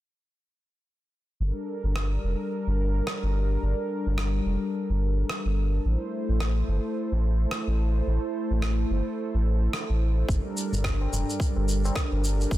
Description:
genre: organic downtempo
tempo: 108 BPM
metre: 4/4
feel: swing 57% on 16ths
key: G minor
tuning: A4 = 440 Hz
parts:
  - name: warm analog pad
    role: sustained chords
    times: 1.4-12.6 s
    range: G3 to C5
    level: -31 LUFS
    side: equal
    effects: chorus, sidechain pumping
  - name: warm sub bass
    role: bass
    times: 1.4-12.6 s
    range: F1 to A1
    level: -24 LUFS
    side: equal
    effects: none
  - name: electronic rim click and cabasa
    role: drums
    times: 2.0-12.6 s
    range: none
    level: -35 LUFS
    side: equal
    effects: soft clipping on snare
  - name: electronic kick drum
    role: drums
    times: 10.3-12.6 s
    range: none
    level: -28 LUFS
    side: equal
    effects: overdrive
  - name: tabla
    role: percussion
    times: 10.7-12.2 s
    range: none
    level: -36 LUFS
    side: left 3 dB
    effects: none
room: light reverb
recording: dense, heavily limited modern master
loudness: -24 LUFS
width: side -15 dB against mid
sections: 1.4-12.6 A section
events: filter sweep on sub bass 1.4-12.6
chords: 1.4 Gmadd9; 5.8 Am; 10.3 Gmadd9

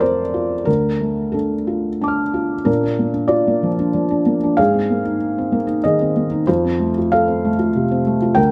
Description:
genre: neoclassical minimalist piano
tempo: 93 BPM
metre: 3/4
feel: uneven beats, rubato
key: Bb major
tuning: A4 = 438 Hz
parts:
  - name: felt-muted upright piano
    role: solo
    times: 0.0-8.5 s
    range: D2 to F6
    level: -18 LUFS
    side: equal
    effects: none
room: light reverb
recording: close, detailed microphones, faint mains hum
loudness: -18 LUFS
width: mono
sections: 0.0-2.7 A section; 2.7-8.5 B section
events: none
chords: 0.0 F; 0.7 Dm; 2.7 Bb; 4.6 Abadd9; 6.5 F

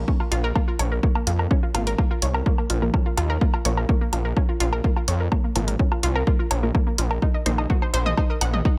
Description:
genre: melodic techno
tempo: 126 BPM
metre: 4/4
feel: straight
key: unclear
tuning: A4 = 439 Hz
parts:
  - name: filtered dub chord stab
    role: stabs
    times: 0.0-8.8 s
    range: Bb2 to Eb4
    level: -34 LUFS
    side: equal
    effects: phaser, sidechain pumping, delay
  - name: gritty driven synth bass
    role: bass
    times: 0.0-8.6 s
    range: Ab1 to F2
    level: -26 LUFS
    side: equal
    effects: distortion, sidechain pumping
  - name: analog pluck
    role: arpeggios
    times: 0.1-8.7 s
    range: Bb3 to Gb5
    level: -31 LUFS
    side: equal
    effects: chorus, sidechain pumping, delay
  - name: electronic kick drum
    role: drums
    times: 0.1-8.8 s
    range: none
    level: -24 LUFS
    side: equal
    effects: none
  - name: punchy analog drum machine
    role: drums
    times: 0.2-8.6 s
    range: hi-hat, toms, woodblock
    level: -30 LUFS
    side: equal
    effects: sidechain pumping on hats, sidechain pumping on perc, sidechain pumping on cymbals, sidechain pumping on toms
room: little or no reverb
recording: none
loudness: -22 LUFS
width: mono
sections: 0.0-8.8 A section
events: filter sweep on synth stab 0.0-8.8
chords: 0.0 Bb5; 7.2 Eb5

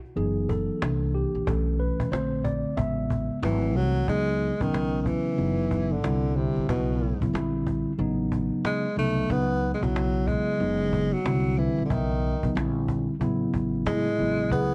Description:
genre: hip hop, jazz-hop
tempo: 92 BPM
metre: 4/4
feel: swing 63% on 16ths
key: C# minor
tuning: A4 = 439 Hz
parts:
  - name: cajon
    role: drums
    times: 0.0-14.7 s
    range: none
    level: -35 LUFS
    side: equal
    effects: none
  - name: mellow tine electric piano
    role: accompaniment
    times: 0.2-14.7 s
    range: C#3 to E5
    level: -29 LUFS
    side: equal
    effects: none
  - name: upright bass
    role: bass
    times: 0.2-14.7 s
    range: F#1 to A2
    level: -32 LUFS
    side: equal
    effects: none
  - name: warm tenor saxophone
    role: melody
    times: 3.4-14.7 s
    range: B2 to B3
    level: -30 LUFS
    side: equal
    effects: none
  - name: vibraphone with soft mallets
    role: second line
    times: 13.9-14.7 s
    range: E4 to G#4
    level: -32 LUFS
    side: equal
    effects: none
room: light reverb, studio reverb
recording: worn, warbling old tape, cassette tape, warbly pitch drift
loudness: -26 LUFS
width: mono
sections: 0.0-4.1 A section; 4.1-14.7 B section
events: tine electric piano solo 0.0-4.1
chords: 0.2 F#13sus4; 0.8 C9; 1.5 B7sus4; 2.1 A#maj7; 2.8 Amaj7; 3.4 G#7b9b13; 4.1 C#9sus4; 5.4 F#7sus4; 6.0 C9; 6.7 Bsus4; 7.3 A#; 8.0 A; 9.3 C#m11; 10.6 F#sus24; 11.3 C9; 11.9 Bsus4; 12.6 A#; 13.2 Amaj7

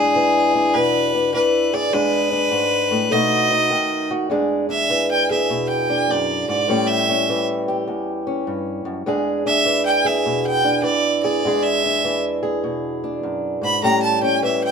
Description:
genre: blues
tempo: 101 BPM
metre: 4/4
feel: swing 65% on 8ths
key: E mixolydian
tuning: A4 = 440 Hz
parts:
  - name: clear fiddle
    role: melody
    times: 0.0-14.7 s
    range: G#4 to B5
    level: -19 LUFS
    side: equal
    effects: none
  - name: fingerpicked old ladder-braced acoustic guitar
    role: accompaniment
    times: 0.0-14.7 s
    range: E2 to G#4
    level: -20 LUFS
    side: equal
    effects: none
room: moderate studio reverb, RT60 0.8 s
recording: band playing live in one room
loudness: -17 LUFS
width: side -6 dB against mid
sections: 0.0-4.3 A section; 4.3-14.7 B section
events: fiddle solo 4.3-14.7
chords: 0.0 E7; 3.1 B7; 4.3 E7; 6.7 A7; 9.1 E7; 13.8 A7

